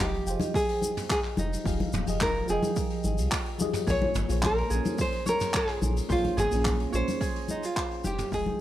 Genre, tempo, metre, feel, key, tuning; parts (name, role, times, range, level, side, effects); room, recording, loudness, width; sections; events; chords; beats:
sunset chillout; 108 BPM; 4/4; straight; Bb dorian; A4 = 441 Hz
nylon-string guitar; melody; 0.0-8.6 s; Eb4 to Db5; -30 LUFS; equal; tape echo
mellow FM electric piano; accompaniment; 0.0-8.6 s; F3 to C6; -34 LUFS; moving between left 7 dB and right 5 dB; chorus, phaser, auto-pan, vintage 12-bit sampler grit
round analog bass; bass; 0.0-8.5 s; Eb1 to C2; -30 LUFS; equal
soft brush drum kit; drums; 0.1-8.4 s; handclaps, hi-hat, shaker, toms; -34 LUFS; equal
congas; percussion; 0.4-8.6 s; -34 LUFS; left 2 dB
electronic kick drum; drums; 0.5-8.4 s; -33 LUFS; equal; overdrive
Celtic harp; arpeggios; 3.9-8.6 s; G4 to Db5; -38 LUFS; right 3 dB; analog delay
studio reverb; -25 LUFS; side -13 dB against mid
0.0-8.6 A section
fade-out 6.8-8.6
0.0 Fm9; 3.9 Bbm9; 8.0 Fm9
0.54 1.10 | 1.66 2.21 2.77 3.32 | 3.88 4.43 4.99 5.54 | 6.10 6.66 7.21 7.77 | 8.32